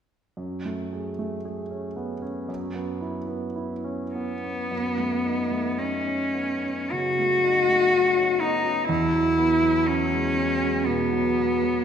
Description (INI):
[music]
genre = classical, impressionist duo for cello and grand piano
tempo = 49-62 BPM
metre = 4/4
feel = rubato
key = F# dorian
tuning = A4 = 436 Hz
[part]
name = warm concert grand piano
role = accompaniment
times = 0.4-11.8 s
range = E2 to G#4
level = -28 LUFS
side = right 2 dB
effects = none
[part]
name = rich cello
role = melody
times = 4.1-11.8 s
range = B3 to F#4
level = -22 LUFS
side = left 1 dB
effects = none
[sound]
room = wet scoring stage reverb, RT60 1.9 s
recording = recorded in a church or concert hall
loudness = -22 LUFS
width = side -8 dB against mid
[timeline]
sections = 0.4-4.7 A section; 4.7-11.8 B section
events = none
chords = 0.4 F#madd9; 2.5 C#m7/F#; 4.7 F#m6; 8.9 Eadd9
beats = | 0.38 1.46 2.49 3.56 | 4.72 5.79 6.93 7.93 | 8.90 9.86 10.86